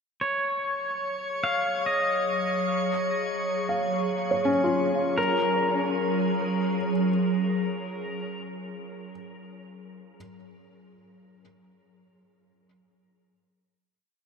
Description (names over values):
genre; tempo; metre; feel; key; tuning
ambient; 73 BPM; 3/4; straight; F# major; A4 = 441 Hz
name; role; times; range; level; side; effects
pedal steel guitar; melody; 0.2-8.4 s; A#4 to E#5; -29 LUFS; left 1 dB; tape echo
organ-like drone; drone; 1.7-8.5 s; F#3 to G#4; -29 LUFS; right 1 dB; ensemble chorus, built-in reverb
drifting glass-harmonics texture; texture; 0.7-5.2 s; C#5 to C#6; -31 LUFS; equal; chorus, built-in reverb
felt-muted upright piano; arpeggios; 3.7-10.2 s; C#4 to E#5; -29 LUFS; equal; tape echo
room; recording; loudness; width
wet huge ambient reverb, RT60 7.4 s; in a vast, echoing space; -24 LUFS; side -5 dB against mid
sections
0.2-5.2 A section; 5.2-7.7 final chord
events
fade-in on synth drone 0.2-5.2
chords
0.2 F#sus2; 2.7 C#add11/F#; 5.2 F#add9